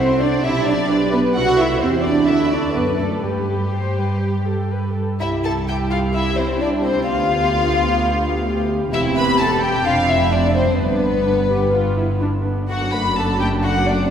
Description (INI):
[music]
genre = quick classical-period movement for string orchestra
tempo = 128 BPM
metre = 4/4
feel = rubato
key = G major, C major from 5.2 s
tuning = A4 = 441 Hz
[part]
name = warm chamber violin section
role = melody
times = 0.0-14.1 s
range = G4 to B5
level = -22 LUFS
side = left 3 dB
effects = none
[part]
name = warm studio violin section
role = second line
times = 0.0-14.0 s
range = B3 to F#5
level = -25 LUFS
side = left 1 dB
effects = none
[part]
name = dark studio viola section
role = accompaniment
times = 0.0-14.1 s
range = D3 to D5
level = -24 LUFS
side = right 1 dB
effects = none
[part]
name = clear chamber double bass section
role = bass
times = 0.0-14.1 s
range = E1 to G2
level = -23 LUFS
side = right 1 dB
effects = none
[part]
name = dark chamber cello section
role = bass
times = 0.0-14.1 s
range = C2 to F#4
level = -22 LUFS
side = right 2 dB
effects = none
[sound]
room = wet concert hall reverb, RT60 2.4 s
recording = heard from further back in the room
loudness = -16 LUFS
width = side -8 dB against mid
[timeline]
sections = 0.0-5.2 A section; 5.2-14.1 B section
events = none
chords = 0.4 G/B; 1.4 C; 2.3 D; 3.2 G; 5.2 C; 7.1 G7/D; 8.9 C/E; 9.8 Dm7/F; 10.8 G; 12.7 D/F#